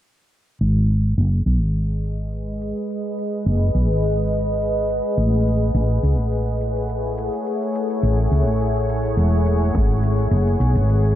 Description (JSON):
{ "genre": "organic downtempo", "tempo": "105 BPM", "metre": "4/4", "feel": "swing 54% on 16ths", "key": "unclear", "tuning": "A4 = 440 Hz", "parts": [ { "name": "bowed-like drone", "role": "sustained chords", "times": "1.9-11.2 s", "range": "G#3 to F#5", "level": "-23 LUFS", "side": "left 1 dB", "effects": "built-in reverb, sidechain pumping" }, { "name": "woody fretless electric bass", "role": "bass", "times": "0.6-11.2 s", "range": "E1 to C#2", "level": "-18 LUFS", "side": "equal", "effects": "sidechain pumping" }, { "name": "shaker", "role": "drums", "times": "0.6-11.2 s", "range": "none", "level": "-60 LUFS", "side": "left 2 dB", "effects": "none" }, { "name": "electronic kick drum", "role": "drums", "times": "9.7-9.9 s", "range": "none", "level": "-19 LUFS", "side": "equal", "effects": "none" } ], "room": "light reverb", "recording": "low-pass filter", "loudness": "-18 LUFS", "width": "side -12 dB against mid", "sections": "0.6-11.2 A section", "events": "filter sweep on fretless electric bass 0.6-11.2; filter sweep on synth drone 0.6-11.2; filter sweep 0.6-11.2", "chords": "0.6 G#m7; 5.2 F#m7/A; 9.7 G#m7" }